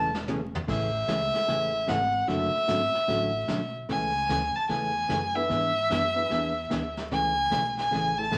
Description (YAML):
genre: country, western swing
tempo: 149 BPM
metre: 4/4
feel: swing 64% on 8ths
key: A major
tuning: A4 = 436 Hz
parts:
  - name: hollow-body jazz guitar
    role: accompaniment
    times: 0.0-8.4 s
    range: C#3 to G#4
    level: -35 LUFS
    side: equal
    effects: none
  - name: honky-tonk upright piano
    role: accompaniment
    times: 0.0-8.3 s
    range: G#3 to B4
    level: -39 LUFS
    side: equal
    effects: none
  - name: upright bass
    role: bass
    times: 0.0-8.4 s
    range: E1 to G#2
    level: -39 LUFS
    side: equal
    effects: none
  - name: vintage brush drum kit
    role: drums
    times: 0.1-8.4 s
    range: brushed snare drum, crash cymbal, hi-hat, kick drum, snare drum, toms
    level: -40 LUFS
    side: equal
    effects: none
  - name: clear fiddle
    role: melody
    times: 0.7-8.4 s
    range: E5 to A5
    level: -28 LUFS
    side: equal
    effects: none
room: wet studio reverb, RT60 0.8 s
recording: vinyl crackle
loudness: -27 LUFS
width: mono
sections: 0.7-8.4 A section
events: drum fill 0.0-0.7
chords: 0.0 Amaj9; 0.7 Amaj7; 2.3 Dmaj7; 3.9 Amaj7/C#; 5.5 E7; 7.1 Amaj7